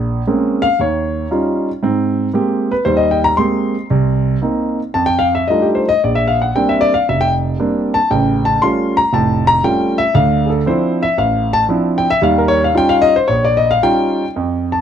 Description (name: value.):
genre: solo jazz.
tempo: 115 BPM.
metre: 4/4.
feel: swing 67% on 8ths, rubato.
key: unclear.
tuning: A4 = 440 Hz.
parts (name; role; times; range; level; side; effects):
warm concert grand piano; solo; 0.0-14.8 s; F1 to C6; -13 LUFS; equal; none.
room: small room ambience.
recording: dry, close 1970s-style studio recording.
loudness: -13 LUFS.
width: side -8 dB against mid.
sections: 0.0-14.4 A section.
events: grand piano solo 0.0-14.4.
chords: 0.0 Bbm9; 0.8 Eb9; 1.8 Abmaj9; 3.9 Cm7; 4.9 F13; 6.0 Bb69; 8.1 Aaug7; 10.2 Dm9; 12.2 Eb9.